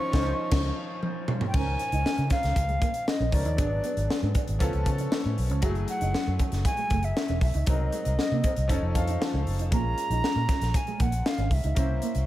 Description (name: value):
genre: polished 1980s jazz-funk pop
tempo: 117 BPM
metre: 4/4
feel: straight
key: Db major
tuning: A4 = 439 Hz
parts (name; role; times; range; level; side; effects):
- reedy concert flute; melody; 0.0-12.3 s; D5 to Db6; -32 LUFS; right 1 dB; none
- bright grand piano; accompaniment; 0.0-12.3 s; F3 to A5; -34 LUFS; left 2 dB; lush chorus
- warm studio string section; sustained chords; 0.0-1.5 s; Eb3 to F4; -45 LUFS; left 1 dB; none
- vintage muted fingered electric bass; bass; 0.1-12.3 s; Fb1 to Db3; -27 LUFS; equal; none
- crisp fusion drum kit; drums; 0.1-12.3 s; crash cymbal, hi-hat, kick drum, snare drum, toms; -28 LUFS; equal; gated reverb
- mellow electric guitar; riff; 1.5-12.2 s; Ab3 to Gb4; -36 LUFS; right 6 dB; analog chorus
room: light reverb, studio reverb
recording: none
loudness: -24 LUFS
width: side -14 dB against mid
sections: 0.0-1.5 A section; 1.5-12.3 B section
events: band accent 0.0-1.5; grand piano fill 0.5-1.5, 8.7-9.7; drum fill 1.0-1.5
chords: 0.0 Dbmaj9; 1.5 Db69; 3.6 Abm7b5; 4.6 Dbaug7; 5.6 Gbm9; 7.7 Cm7b5; 8.7 F7b13; 9.7 Bbm7